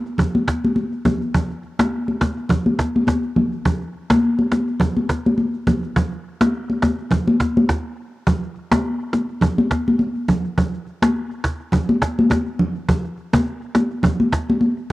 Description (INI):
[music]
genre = afrobeats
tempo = 104 BPM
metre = 4/4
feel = swing 55% on 16ths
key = none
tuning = none
[part]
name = cajon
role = drums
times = 0.1-14.8 s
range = none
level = -21 LUFS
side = right 1 dB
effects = cassette tape
[part]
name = congas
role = percussion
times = 0.2-14.9 s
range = none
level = -18 LUFS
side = left 1 dB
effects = none
[sound]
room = light reverb, small room ambience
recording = home recording on cassette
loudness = -17 LUFS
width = side -18 dB against mid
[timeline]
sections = 0.0-8.3 A section; 8.3-14.9 B section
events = stop 7.7-8.3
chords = none